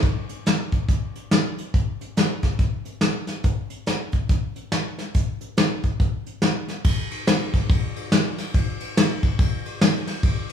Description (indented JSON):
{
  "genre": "gospel",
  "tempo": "141 BPM",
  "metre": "4/4",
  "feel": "swing 62% on 8ths",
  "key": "none",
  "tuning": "none",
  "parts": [
    { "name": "soft brush drum kit", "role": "drums", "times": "0.0-10.5 s", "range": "crash cymbal, hi-hat, kick drum, ride cymbal, snare drum", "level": "-20 LUFS", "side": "left 1 dB", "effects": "none" }
  ],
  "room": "wet large studio reverb, RT60 1.1 s",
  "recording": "band playing live in one room, studio ambience, faint mains hum",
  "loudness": "-21 LUFS",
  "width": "side -8 dB against mid",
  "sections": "0.0-6.8 A section; 6.8-10.5 B section",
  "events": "none",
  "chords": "none"
}